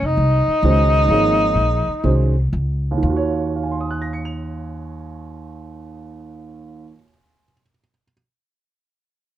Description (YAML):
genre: modal jazz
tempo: 116-135 BPM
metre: 4/4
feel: swing 67% on 8ths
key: Eb dorian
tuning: A4 = 443 Hz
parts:
  - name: breathy tenor saxophone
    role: melody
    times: 0.0-2.5 s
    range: Eb4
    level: -18 LUFS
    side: left 1 dB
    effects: none
  - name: upright bass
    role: bass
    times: 0.0-6.9 s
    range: F1 to Eb2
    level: -20 LUFS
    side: equal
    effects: none
  - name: warm grand piano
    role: accompaniment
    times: 0.6-8.1 s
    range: Eb2 to F7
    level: -24 LUFS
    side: right 4 dB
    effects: none
room: little or no reverb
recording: dry, close 1970s-style studio recording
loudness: -16 LUFS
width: side -12 dB against mid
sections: 0.0-3.0 A section; 3.0-7.2 B section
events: slowing down 0.0-3.0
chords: 0.0 Dbadd9; 3.0 Ebm9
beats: 0.18 0.63 | 1.08 1.55 2.03 2.52 | 3.03 3.54 4.06 4.58 | 5.09 5.61 6.12 6.64